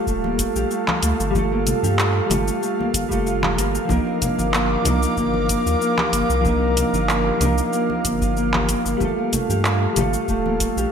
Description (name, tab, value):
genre	sunset chillout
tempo	94 BPM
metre	4/4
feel	straight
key	C dorian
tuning	A4 = 443 Hz
part	mellow electric guitar	accompaniment	0.0-10.9 s	F3 to Bb4	-25 LUFS	equal	auto-pan, low-pass filter, ping-pong delay
part	airy breathy pad	sustained chords	0.0-10.9 s	A4 to D6	-25 LUFS	right 1 dB	chorus
part	Celtic harp	arpeggios	0.0-10.9 s	A3 to A4	-25 LUFS	equal	ping-pong delay
part	round analog bass	bass	0.1-10.9 s	D1 to G2	-24 LUFS	equal	none
part	deep house drum kit	drums	0.1-10.9 s	cabasa, handclaps, hi-hat	-25 LUFS	equal	overdrive, small room ambience, gated reverb
part	electronic kick drum	drums	0.1-10.7 s	none	-28 LUFS	equal	small room ambience
part	congas	percussion	0.2-10.6 s	none	-29 LUFS	left 3 dB	none
room	moderate lush hall reverb, RT60 2.1 s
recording	bright 1980s-style digital production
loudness	-18 LUFS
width	side -7 dB against mid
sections	0.0-10.9 A section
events	none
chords	0.0 Gm9; 3.9 Cm11; 9.0 Gm9